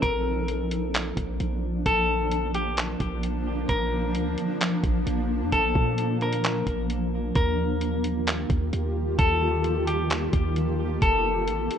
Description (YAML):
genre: hip hop, atmospheric cloud-rap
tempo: 131 BPM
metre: 4/4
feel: half-time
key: Bb major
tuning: A4 = 443 Hz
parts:
  - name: clean electric guitar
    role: melody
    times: 0.0-11.8 s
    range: G4 to Bb4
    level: -28 LUFS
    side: left 3 dB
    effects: low-pass filter, ping-pong delay
  - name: granular cloud pad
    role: sustained chords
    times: 0.0-11.8 s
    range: Eb3 to A4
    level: -28 LUFS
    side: equal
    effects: built-in reverb, sidechain pumping
  - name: warm 808-style bass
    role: bass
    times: 0.0-11.7 s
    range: F1 to Bb2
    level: -29 LUFS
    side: right 1 dB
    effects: none
  - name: lo-fi sampler-style drum kit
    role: drums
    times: 0.0-11.8 s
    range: handclaps, hi-hat, kick drum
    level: -28 LUFS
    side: right 1 dB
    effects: none
room: moderate lush hall reverb, RT60 2.0 s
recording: rough home demo mix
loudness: -23 LUFS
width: side -8 dB against mid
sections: 0.0-11.8 A section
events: none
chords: 0.0 Bb; 7.4 Ebadd9; 11.0 F7